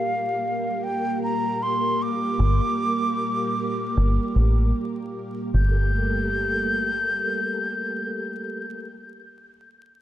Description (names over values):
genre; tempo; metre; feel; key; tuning
trip hop; free time; none; none; G minor; A4 = 440 Hz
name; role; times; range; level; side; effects
wooden flute; melody; 0.0-8.8 s; F5 to G6; -26 LUFS; equal; vintage 12-bit sampler grit, tape echo
string machine, cellos; sustained chords; 0.0-8.8 s; Bb3 to Bb4; -28 LUFS; equal; ensemble chorus
deep dub fingered electric bass; bass; 2.4-7.9 s; G1 to A1; -20 LUFS; equal; none
room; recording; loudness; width
light reverb, small room ambience; dark, warm production, vinyl crackle; -22 LUFS; side -13 dB against mid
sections
0.0-5.5 A section; 5.5-8.7 B section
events
none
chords
0.0 Gm; 5.5 Gmadd9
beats
free time